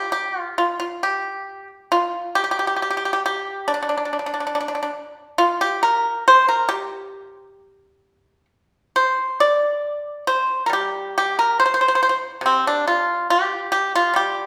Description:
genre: chinese traditional, Chinese solo plucked strings.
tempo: 65-71 BPM.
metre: 2/4.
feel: rubato.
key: G yu mode.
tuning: A4 = 439 Hz.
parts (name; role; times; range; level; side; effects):
pipa; solo; 0.0-14.5 s; C3 to D5; -20 LUFS; equal; none.
room: wet large studio reverb, RT60 1.3 s.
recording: band playing live in one room.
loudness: -20 LUFS.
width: mono.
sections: 0.0-1.9 A section; 1.9-14.5 B section.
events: none.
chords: none.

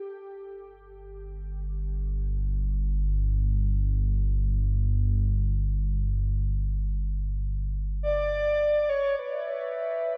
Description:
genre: ambient.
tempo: free time.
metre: none.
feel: none.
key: unclear.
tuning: A4 = 442 Hz.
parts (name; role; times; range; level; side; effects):
deep rumbling drone; bass; 1.2-10.2 s; G1 to A1; -29 LUFS; equal; built-in reverb.
breathy flute-like synth lead; melody; 8.0-10.2 s; B4 to D5; -30 LUFS; equal; lush chorus, cassette tape, tape echo.
glass harmonica; texture; 9.3-10.2 s; E5; -33 LUFS; equal; none.
room: light reverb, small room ambience.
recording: dark, warm production.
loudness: -28 LUFS.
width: mono.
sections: 0.0-9.2 A section.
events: none.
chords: 0.0 G5; 9.2 Asus2.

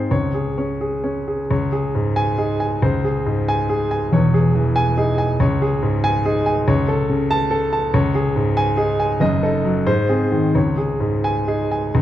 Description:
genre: classical, virtuoso piano study.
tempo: 83-97 BPM (dotted quarters).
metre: 6/8.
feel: rubato.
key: C# minor.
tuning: A4 = 440 Hz.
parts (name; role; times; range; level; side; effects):
warm grand piano; solo; 0.0-12.0 s; E1 to A5; -17 LUFS; equal; none.
room: wet recital hall reverb, RT60 1.6 s.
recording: dark, warm production.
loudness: -17 LUFS.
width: side -12 dB against mid.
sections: 0.0-1.5 A section; 1.5-11.9 B section.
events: none.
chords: 0.1 Db5; 1.5 C#5; 2.8 G#/C#; 4.1 C#m/E; 5.4 C#5; 6.7 A/C#; 7.9 C#5; 9.2 D#dim/F#; 9.9 G#; 10.5 C#5.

